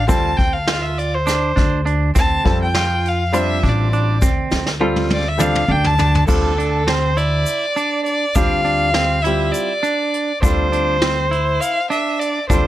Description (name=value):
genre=progressive instrumental, band music in an uneven meter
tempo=203 BPM (eighths)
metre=7/8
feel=straight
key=D minor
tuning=A4 = 440 Hz
part: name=rich violin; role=melody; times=0.0-12.7 s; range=A4 to A5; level=-20 LUFS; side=equal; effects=analog delay
part: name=semi-hollow electric guitar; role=arpeggios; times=0.0-12.7 s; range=C4 to F4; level=-23 LUFS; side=right 4 dB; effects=none
part: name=upright bass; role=bass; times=0.0-12.7 s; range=A1 to F2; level=-20 LUFS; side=equal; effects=none
part: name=clear grand piano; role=accompaniment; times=0.1-12.7 s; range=G3 to C5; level=-22 LUFS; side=left 1 dB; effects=none
part: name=vintage brush drum kit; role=drums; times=0.1-12.6 s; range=crash cymbal, hi-hat, kick drum, snare drum, toms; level=-21 LUFS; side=equal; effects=none
part: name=egg shaker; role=percussion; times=0.1-12.7 s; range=none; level=-33 LUFS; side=left 5 dB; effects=none
room=light reverb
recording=none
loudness=-15 LUFS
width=side -14 dB against mid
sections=0.0-6.3 A section; 6.3-12.7 B section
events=violin solo 0.0-6.3; drum fill 4.5-6.3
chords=0.0 Dm7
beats=| 0.09 0.38 0.68 0.97 1.27 1.57 1.86 | 2.16 2.45 2.75 3.04 3.34 3.63 3.93 | 4.22 4.52 4.81 5.11 5.40 5.70 6.00 | 6.29 6.59 6.88 7.18 7.47 7.77 8.06 | 8.36 8.65 8.95 9.24 9.54 9.84 10.13 | 10.43 10.72 11.02 11.31 11.61 11.91 12.20 | 12.50